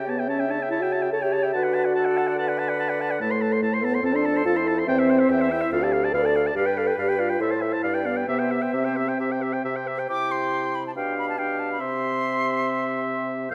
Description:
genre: quick classical-period movement for wind quintet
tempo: 142 BPM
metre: 4/4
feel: rubato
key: D major, C major from 3.2 s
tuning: A4 = 440 Hz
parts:
  - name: bright concert flute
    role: melody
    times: 0.0-13.5 s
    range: G4 to G6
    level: -32 LUFS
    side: equal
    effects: none
  - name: clear oboe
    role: second line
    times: 0.0-13.5 s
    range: E5 to C6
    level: -31 LUFS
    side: equal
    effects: none
  - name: warm clarinet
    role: accompaniment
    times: 0.0-13.5 s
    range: G4 to F#5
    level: -35 LUFS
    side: equal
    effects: none
  - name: warm bassoon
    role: bass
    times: 0.0-13.5 s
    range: D2 to D3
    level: -32 LUFS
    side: equal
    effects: none
  - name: mellow French horn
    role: accompaniment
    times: 0.1-13.5 s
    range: A3 to B4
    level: -27 LUFS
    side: equal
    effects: none
room: moderate concert hall reverb, RT60 2.3 s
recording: none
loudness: -24 LUFS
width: mono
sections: 0.0-10.1 A section; 10.1-13.5 B section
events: none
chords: 0.0 A7/C#; 1.6 D; 3.2 Am; 4.0 F; 4.9 C/E; 5.7 Dm; 6.6 G7; 7.4 Am; 7.8 G7; 8.3 C; 11.0 G7/B; 11.8 C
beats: 0.29 0.71 1.14 | 1.55 1.97 2.39 2.80 | 3.21 3.63 4.04 4.46 | 4.88 5.30 5.72 6.14 | 6.56 6.98 7.41 7.84 | 8.29 8.75 9.20 9.65 | 10.10 10.53 10.96 11.39 | 11.81 12.23 12.66 13.09 | 13.51

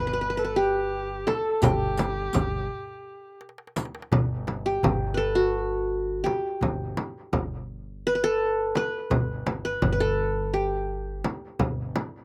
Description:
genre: Turkish makam ensemble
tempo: 168 BPM (eighths)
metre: 7/8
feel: straight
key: G makam rast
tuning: A4 = 441 Hz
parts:
  - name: qanun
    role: melody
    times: 0.0-11.8 s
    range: F#4 to B4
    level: -28 LUFS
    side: equal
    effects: none
  - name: warm kamancheh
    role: second line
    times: 0.0-3.4 s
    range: G4 to B4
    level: -34 LUFS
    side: equal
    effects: none
  - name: upright bass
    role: bass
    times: 0.0-11.9 s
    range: G1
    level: -36 LUFS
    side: equal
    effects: none
  - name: riq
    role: percussion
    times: 0.4-3.9 s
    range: none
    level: -42 LUFS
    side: equal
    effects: none
  - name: darbuka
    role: percussion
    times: 1.3-12.1 s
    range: none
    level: -33 LUFS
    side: equal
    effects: slapback echo
  - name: frame drum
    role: percussion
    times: 1.3-12.1 s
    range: none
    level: -29 LUFS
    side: equal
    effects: none
room: little or no reverb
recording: recorded outdoors, with no room sound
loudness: -27 LUFS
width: mono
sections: 0.0-4.1 A section; 4.1-12.2 B section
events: drum fill 3.4-4.1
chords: none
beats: 0.20 0.56 0.91 1.27 | 1.62 1.98 2.34 2.69 3.05 3.41 3.76 | 4.12 4.48 4.83 5.19 5.54 5.90 6.26 | 6.61 6.97 7.33 7.68 8.04 8.39 8.75 | 9.11 9.46 9.82 10.17 10.53 10.89 11.24 | 11.60 11.95

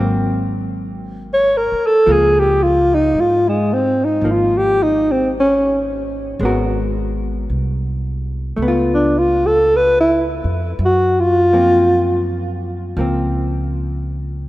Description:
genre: jazz ballad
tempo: 55 BPM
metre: 4/4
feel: swing 68% on 8ths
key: unclear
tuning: A4 = 440 Hz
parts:
  - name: vintage hollow-body jazz guitar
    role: accompaniment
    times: 0.0-14.5 s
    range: F3 to Bb4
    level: -22 LUFS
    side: equal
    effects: none
  - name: upright bass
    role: bass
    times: 0.0-14.5 s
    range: Ab1 to Ab2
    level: -21 LUFS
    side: equal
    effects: none
  - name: mellow alto saxophone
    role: melody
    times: 1.3-12.3 s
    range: Ab3 to Db5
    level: -14 LUFS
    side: equal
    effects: none
room: moderate lush hall reverb, RT60 3.4 s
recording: rough home demo mix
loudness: -14 LUFS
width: side -16 dB against mid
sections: 0.0-14.5 A section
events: alto saxophone solo 0.0-14.5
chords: 0.0 Ab9; 2.1 Db6; 6.4 Abm9; 8.6 Dbaug7; 10.8 Gbmaj7#11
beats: 0.99 | 2.07 3.15 4.24 5.32 | 6.40 7.49 8.58 9.68 | 10.78 11.88 12.96 14.04

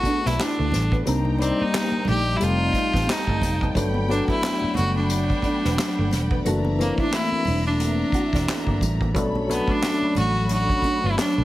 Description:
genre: R&B, neo-soul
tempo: 89 BPM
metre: 4/4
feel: swing 58% on 16ths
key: unclear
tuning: A4 = 441 Hz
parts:
  - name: rich fiddle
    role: melody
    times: 0.0-11.4 s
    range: A#3 to G4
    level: -25 LUFS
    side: right 1 dB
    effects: slapback echo
  - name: tine electric piano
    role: accompaniment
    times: 0.0-11.4 s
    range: E3 to D5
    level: -26 LUFS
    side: left 3 dB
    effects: phaser
  - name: warm studio string section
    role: sustained chords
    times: 0.0-11.4 s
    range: D4 to B5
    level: -34 LUFS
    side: equal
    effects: none
  - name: vintage muted fingered electric bass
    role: bass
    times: 0.0-11.4 s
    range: E1 to D2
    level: -25 LUFS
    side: equal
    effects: none
  - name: unplugged drum kit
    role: drums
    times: 0.0-11.4 s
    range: handclaps, hi-hat, kick drum, snare drum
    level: -27 LUFS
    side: equal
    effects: none
  - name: congas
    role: percussion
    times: 0.0-11.3 s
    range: none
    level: -34 LUFS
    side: right 2 dB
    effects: none
  - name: electric guitar through a small old amp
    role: second line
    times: 0.1-11.4 s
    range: A3 to F#4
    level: -32 LUFS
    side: right 3 dB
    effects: phaser
room: light reverb, small room ambience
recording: heavily compressed radio sound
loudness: -20 LUFS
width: side -15 dB against mid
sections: 0.0-11.4 A section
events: none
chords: 0.0 D6; 1.1 Cm7; 2.4 F9; 3.8 Gmaj7; 6.5 F#7alt; 9.1 Bm9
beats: 0.38 | 1.06 1.73 2.40 3.08 | 3.75 4.43 5.10 5.78 | 6.45 7.12 7.80 8.47 | 9.15 9.82 10.49 11.17

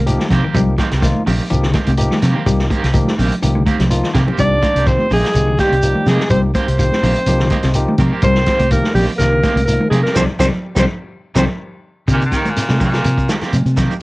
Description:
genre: afrobeat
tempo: 125 BPM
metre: 4/4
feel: swing 53% on 16ths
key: C minor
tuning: A4 = 440 Hz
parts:
  - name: clear alto saxophone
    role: melody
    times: 0.0-0.3, 4.4-11.4 s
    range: G4 to D5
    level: -18 LUFS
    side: equal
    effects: cassette tape
  - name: clear trombone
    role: second line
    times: 0.0-0.3, 4.4-11.4 s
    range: G3 to D4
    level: -25 LUFS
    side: right 2 dB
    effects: cassette tape
  - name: semi-hollow electric guitar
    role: arpeggios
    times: 0.0-13.9 s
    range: C3 to G3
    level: -23 LUFS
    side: left 4 dB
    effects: spring reverb, cassette tape
  - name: fingered electric bass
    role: bass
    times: 0.0-13.9 s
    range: Bb1 to C3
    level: -17 LUFS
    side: equal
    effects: none
  - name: barky tine electric piano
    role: accompaniment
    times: 0.1-11.4 s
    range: F3 to Bb5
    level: -24 LUFS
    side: left 2 dB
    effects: cassette tape
  - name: vintage drum kit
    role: drums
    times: 0.1-13.9 s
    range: hi-hat, kick drum, snare drum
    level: -21 LUFS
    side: equal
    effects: cassette tape
  - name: shekere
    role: percussion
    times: 0.1-14.0 s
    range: none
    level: -24 LUFS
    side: equal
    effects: none
  - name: congas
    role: percussion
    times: 0.2-13.9 s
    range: none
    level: -21 LUFS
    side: right 1 dB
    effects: none
  - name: electric guitar at the edge of break-up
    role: stabs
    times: 0.3-13.9 s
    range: Eb3 to G4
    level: -24 LUFS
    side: right 4 dB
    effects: tremolo, cassette tape
  - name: raspy baritone saxophone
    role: melody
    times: 12.1-13.3 s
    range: Bb2 to Eb3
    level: -22 LUFS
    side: equal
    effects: cassette tape
room: little or no reverb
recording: home recording on cassette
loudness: -13 LUFS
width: side -21 dB against mid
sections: 0.0-12.1 A section; 12.1-14.0 B section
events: drum fill 3.4-4.4, 11.6-12.1; tine electric piano fill 7.3-8.2; band accent 10.2-12.1; baritone saxophone solo 12.1-14.0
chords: 0.0 Cm7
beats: 0.07 | 0.55 1.03 1.51 1.99 | 2.47 2.95 3.43 3.91 | 4.39 4.87 5.35 5.83 | 6.31 6.79 7.27 7.75 | 8.23 8.71 9.19 9.68 | 10.16 10.64 11.12 11.60 | 12.08 12.57 13.05 13.53 | 14.02

